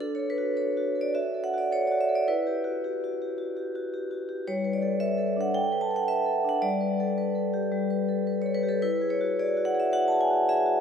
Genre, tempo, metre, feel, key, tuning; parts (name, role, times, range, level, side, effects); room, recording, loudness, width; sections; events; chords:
classical, contemporary piece for solo vibraphone; 109 BPM; 4/4; rubato; D major; A4 = 440 Hz
vibraphone with medium mallets; solo; 0.0-10.8 s; G3 to A5; -24 LUFS; equal
wet church reverb, RT60 3.5 s; heard from further back in the room; -24 LUFS; side -7 dB against mid
0.0-10.8 A section
0.0 D; 2.3 Emadd9; 4.5 Gadd9; 6.6 A11/G; 8.8 Eadd9